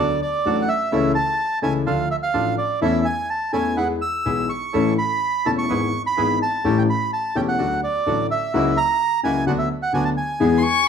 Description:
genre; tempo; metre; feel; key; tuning
tango; 127 BPM; 4/4; rubato; A major; A4 = 440 Hz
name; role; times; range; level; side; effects
bandoneon; melody; 0.0-10.9 s; D5 to E6; -22 LUFS; right 3 dB; none
warm concert grand piano; accompaniment; 0.0-10.6 s; E1 to A4; -21 LUFS; left 3 dB; none
bandoneon; stabs; 0.0-10.6 s; G#2 to A4; -30 LUFS; right 5 dB; none
warm violin; second line; 10.6-10.9 s; C6 to C#6; -17 LUFS; left 8 dB; none
room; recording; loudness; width
moderate large studio reverb, RT60 0.9 s; minimal, uncompressed stereo recording; -18 LUFS; side -7 dB against mid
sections
0.0-10.9 A section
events
none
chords
0.0 D; 0.9 A/C#; 1.9 Dm; 2.8 A/E; 3.8 E; 4.7 A; 5.7 E/G#; 6.6 A7; 7.6 D; 8.5 F#7/C#; 9.5 Bm/D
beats
0.45 | 0.92 1.39 1.86 2.34 | 2.81 3.29 3.77 4.24 | 4.73 5.21 5.69 6.17 | 6.64 7.12 7.59 8.06 | 8.53 9.00 9.46 9.93 | 10.40 10.87

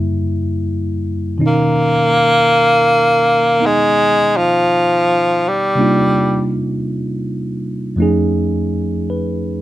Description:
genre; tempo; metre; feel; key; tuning
jazz ballad; 55 BPM; 4/4; swing 67% on 8ths; unclear; A4 = 440 Hz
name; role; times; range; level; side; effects
tine electric piano; accompaniment; 0.0-9.6 s; F2 to B4; -18 LUFS; right 1 dB; none
breathy tenor saxophone; melody; 1.5-6.6 s; E#3 to A#3; -12 LUFS; equal; none
room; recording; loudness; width
light reverb; close, detailed microphones; -13 LUFS; side -14 dB against mid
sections
0.0-9.6 A section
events
none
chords
0.0 F#7b9; 1.4 B; 5.8 Cm11; 8.0 F7alt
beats
0.29 | 1.39 2.49 3.59 4.68 | 5.78 6.88 7.98 9.08

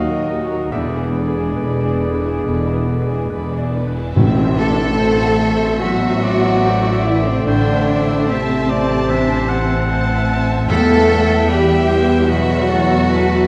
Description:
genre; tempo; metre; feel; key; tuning
cinematic, emotional film score for orchestra; 68-76 BPM; 4/4; rubato; A dorian; A4 = 439 Hz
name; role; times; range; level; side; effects
warm symphonic violin section; melody; 0.0-13.5 s; F#4 to A5; -32 LUFS; equal; none
clear oboe; second line; 0.0-13.5 s; A4 to F#5; -29 LUFS; equal; none
warm clarinet; second line; 0.0-3.8 s; F#4 to G#4; -29 LUFS; equal; none
warm studio violin section; second line; 0.0-13.5 s; D4 to E5; -32 LUFS; equal; none
bright concert grand piano; accompaniment; 0.0-13.5 s; E2 to G#5; -27 LUFS; equal; none
rich symphonic viola section; accompaniment; 0.0-13.5 s; D3 to D4; -29 LUFS; equal; none
mellow French horn section; sustained chords; 0.0-13.5 s; C3 to D#4; -24 LUFS; equal; none
rich symphonic cello section; bass; 0.0-13.5 s; D#2 to A4; -23 LUFS; equal; none
rich symphonic double bass section; bass; 0.0-13.5 s; E1 to E2; -22 LUFS; equal; none
cymbal swell and tam-tam; percussion; 0.7-7.4 s; none; -31 LUFS; equal; none
timpani; percussion; 4.2-5.4, 10.7-11.8 s; E2 to A2; -22 LUFS; equal; none
mellow large flute ensemble; second line; 4.6-13.5 s; C5 to A5; -28 LUFS; equal; none
room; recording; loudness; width
wet scoring stage reverb, RT60 1.8 s; dark, warm production; -16 LUFS; mono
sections
0.0-4.2 A section; 4.2-13.5 B section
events
band accent 4.2-5.0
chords
0.0 D#m; 0.7 E7; 4.2 Am; 10.7 Emadd9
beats
| 0.72 1.59 2.45 3.31 | 4.16 5.00 5.82 6.65 | 7.48 8.29 9.10 9.90 | 10.70 11.49 12.29 13.10

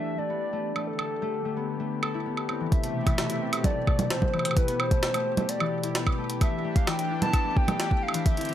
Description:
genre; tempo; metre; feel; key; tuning
IDM; 130 BPM; 4/4; straight; A minor; A4 = 439 Hz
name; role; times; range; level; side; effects
warbly nostalgic lead; melody; 0.0-8.5 s; A4 to A5; -31 LUFS; equal; chorus, cassette tape, ping-pong delay
warm analog pad; sustained chords; 0.0-8.5 s; B2 to G4; -34 LUFS; left 1 dB; chorus, sidechain pumping
concert harp; arpeggios; 0.0-8.5 s; E3 to A4; -32 LUFS; left 5 dB; ping-pong delay
jungle sampler-style drum kit; drums; 0.8-8.5 s; congas, hi-hat, snare drum, woodblock; -30 LUFS; right 3 dB; none
electronic kick drum; drums; 2.7-8.3 s; none; -24 LUFS; equal; none
room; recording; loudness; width
light reverb; none; -24 LUFS; side -11 dB against mid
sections
0.0-2.7 A section; 2.7-8.5 B section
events
filter sweep on analog synth pad 0.0-2.7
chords
0.0 Em7; 0.9 D7sus4; 2.7 Am9; 6.4 Em7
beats
0.41 | 0.87 1.33 1.80 2.26 | 2.72 3.18 3.64 4.10 | 4.57 5.03 5.49 5.95 | 6.41 6.87 7.33 7.80 | 8.26

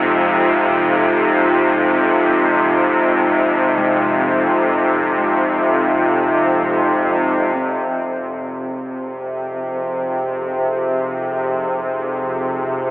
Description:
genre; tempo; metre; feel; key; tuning
dark ambient drone; free time; none; none; F minor; A4 = 440 Hz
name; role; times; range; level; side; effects
dark analog pad; sustained chords; 0.0-12.9 s; Ab3 to Ab4; -21 LUFS; equal; chorus
bowed-like drone; drone; 0.0-12.9 s; F2 to C3; -16 LUFS; equal; built-in reverb
quartz singing bowl; texture; 0.0-12.9 s; F3 to C4; -36 LUFS; equal; none
gamelan-type bossed gongs; arpeggios; 3.8-9.4 s; Ab3; -36 LUFS; left 1 dB; none
room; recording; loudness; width
wet cathedral reverb, RT60 5.7 s; telephone sound; -15 LUFS; side -19 dB against mid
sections
0.0-7.6 A section; 7.6-12.9 B section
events
none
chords
0.0 Fm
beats
free time

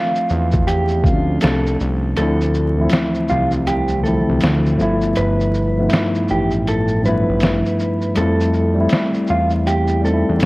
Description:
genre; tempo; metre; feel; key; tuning
lo-fi hip hop; 80 BPM; 4/4; swing 64% on 16ths; D dorian; A4 = 441 Hz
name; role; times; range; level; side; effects
mellow electric guitar; melody; 0.0-10.5 s; F4 to B4; -22 LUFS; right 1 dB; none
tine electric piano; accompaniment; 0.0-10.5 s; D2 to E5; -19 LUFS; equal; medium stereo tremolo, cassette tape
lo-fi sampler-style drum kit; drums; 0.2-10.5 s; hi-hat, kick drum, shaker, snare drum; -21 LUFS; equal; vintage 12-bit sampler grit
fat analog bass; bass; 0.3-10.5 s; G1 to F2; -19 LUFS; equal; none
room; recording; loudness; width
moderate spring reverb, RT60 2.6 s; worn, warbling old tape, cassette tape, vinyl crackle, warbly pitch drift; -15 LUFS; side -21 dB against mid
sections
0.0-2.2 A section; 2.2-10.5 B section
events
kick muted 2.2-10.5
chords
0.0 Dm7; 2.2 Dm9; 4.8 G13; 8.2 Fmaj9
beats
0.67 1.42 | 2.17 2.92 3.67 4.42 | 5.17 5.92 6.67 7.42 | 8.16 8.91 9.66 10.41

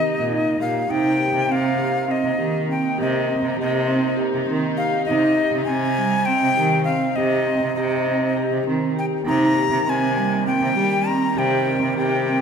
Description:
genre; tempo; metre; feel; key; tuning
contemporary instrumental, chamber music in an uneven meter; 200 BPM (eighths); 7/8; straight; C minor; A4 = 443 Hz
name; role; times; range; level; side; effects
breathy bright jazz flute; melody; 0.0-12.4 s; Eb5 to Bb5; -22 LUFS; left 2 dB; none
warm symphonic string section; sustained chords; 0.0-12.4 s; C3 to Eb4; -30 LUFS; left 2 dB; none
vibraphone with medium mallets; arpeggios; 0.0-12.4 s; G3 to G4; -22 LUFS; right 2 dB; none
clear cello; bass; 0.2-12.4 s; Bb2 to G3; -25 LUFS; right 2 dB; none
room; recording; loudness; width
moderate concert hall reverb, RT60 2.0 s; minimal, uncompressed stereo recording; -18 LUFS; side -6 dB against mid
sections
0.9-12.4 A section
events
none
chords
0.0 Cm7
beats
0.01 0.31 0.61 | 0.91 1.20 1.50 1.80 2.10 2.39 2.69 | 2.99 3.29 3.59 3.88 4.18 4.48 4.78 | 5.08 5.38 5.68 5.97 6.28 6.57 6.87 | 7.17 7.47 7.77 8.07 8.37 8.67 8.97 | 9.27 9.57 9.88 10.18 10.48 10.78 11.08 | 11.38 11.68 11.98 12.29

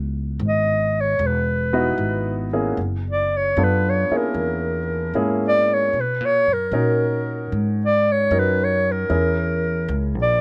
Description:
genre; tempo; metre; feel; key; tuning
jazz ballad; 76 BPM; 4/4; swing 69% on 8ths; unclear; A4 = 444 Hz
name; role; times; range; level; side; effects
upright bass; bass; 0.0-10.4 s; E1 to B2; -26 LUFS; equal; none
warm clarinet; melody; 0.5-10.4 s; A#4 to D#5; -23 LUFS; equal; none
warm grand piano; accompaniment; 1.7-10.4 s; A#3 to A#4; -27 LUFS; equal; none
room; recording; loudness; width
little or no reverb; recorded outdoors, with no room sound; -21 LUFS; mono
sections
0.0-10.4 A section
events
clarinet solo 0.0-10.4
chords
0.0 C#m11; 2.8 F#9; 5.9 Bmaj9 (rootless); 9.1 A#m7b5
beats
0.39 1.18 1.97 | 2.76 3.56 4.35 5.14 | 5.94 6.73 7.52 8.31 | 9.10 9.88

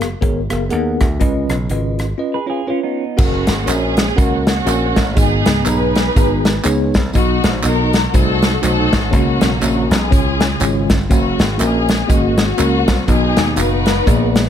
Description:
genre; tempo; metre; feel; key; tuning
uptempo gospel; 121 BPM; 4/4; swing 60% on 8ths; F# major; A4 = 435 Hz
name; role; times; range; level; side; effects
bell-like tine electric piano; accompaniment; 0.0-14.5 s; G#2 to A#5; -19 LUFS; equal; fast stereo tremolo
dry thumbed slap bass; bass; 0.0-14.5 s; F#1 to D#2; -19 LUFS; equal; none
natural country drum kit; drums; 0.0-14.5 s; crash cymbal, hi-hat, kick drum, rim click, snare drum; -16 LUFS; equal; none
clean electric guitar; second line; 2.3-3.2 s; B3 to B4; -23 LUFS; right 6 dB; wide subtle chorus
warm studio string section; melody; 3.2-14.5 s; A#3 to B4; -20 LUFS; left 1 dB; none
tambourine and handclaps; percussion; 3.2-14.5 s; none; -28 LUFS; right 4 dB; none
room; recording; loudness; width
little or no reverb; none; -13 LUFS; side -9 dB against mid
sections
0.0-3.2 A section; 3.2-14.5 B section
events
break 2.2-3.2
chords
0.0 G#m9; 1.2 C#9; 3.2 F#; 5.2 G#m; 7.2 B; 8.1 Cdim7; 9.1 F#; 10.1 C#; 11.1 F#; 13.1 B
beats
0.22 0.71 | 1.21 1.71 2.20 2.70 | 3.19 3.69 4.18 4.68 | 5.17 5.67 6.16 6.66 | 7.15 7.64 8.14 8.63 | 9.13 9.62 10.12 10.61 | 11.11 11.60 12.10 12.59 | 13.09 13.58 14.08

